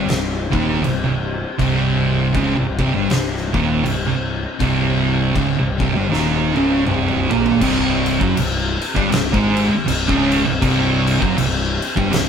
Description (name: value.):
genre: stoner and doom metal.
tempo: 80 BPM.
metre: 4/4.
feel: swing 59% on 8ths.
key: C phrygian.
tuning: A4 = 439 Hz.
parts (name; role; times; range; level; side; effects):
soft string machine; sustained chords; 0.0-12.3 s; C4 to C5; -32 LUFS; left 4 dB; none.
thick fuzz guitar; riff; 0.0-12.3 s; C2 to Bb3; -23 LUFS; left 9 dB; distortion.
thick fuzz guitar; riff; 0.0-12.3 s; C2 to Bb3; -19 LUFS; right 6 dB; distortion.
fuzz picked electric bass; bass; 0.0-12.3 s; C1 to Bb1; -24 LUFS; left 1 dB; overdrive.
oversized low-tuned drum kit; drums; 0.1-12.3 s; crash cymbal, kick drum, snare drum, toms; -23 LUFS; left 2 dB; none.
room: light reverb.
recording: band playing live in one room.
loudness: -16 LUFS.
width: side -7 dB against mid.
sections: 0.0-7.6 A section; 7.6-12.3 B section.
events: drum fill 6.1-7.6.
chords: 0.0 Cm; 7.6 C5.